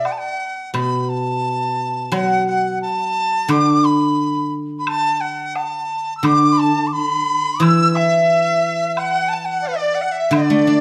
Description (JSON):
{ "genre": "chinese traditional, Chinese chamber ensemble", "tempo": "88 BPM", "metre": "2/4", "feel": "rubato", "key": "D gong mode", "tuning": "A4 = 445 Hz", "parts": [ { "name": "mellow dizi", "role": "melody", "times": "0.0-10.8 s", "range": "D5 to E6", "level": "-22 LUFS", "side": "equal", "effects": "none" }, { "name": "bright dizi", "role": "second line", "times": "0.0-0.4, 6.2-10.8 s", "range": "B4 to E6", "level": "-23 LUFS", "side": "equal", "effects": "none" }, { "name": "guzheng", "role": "accompaniment", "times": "0.0-10.8 s", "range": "B2 to D4", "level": "-21 LUFS", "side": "equal", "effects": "none" }, { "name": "woodblock", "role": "percussion", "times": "0.1-10.5 s", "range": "none", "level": "-30 LUFS", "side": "equal", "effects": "none" } ], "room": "moderate recital hall reverb, RT60 1.2 s", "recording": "none", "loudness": "-18 LUFS", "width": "mono", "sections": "0.7-10.8 A section", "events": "none", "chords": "none" }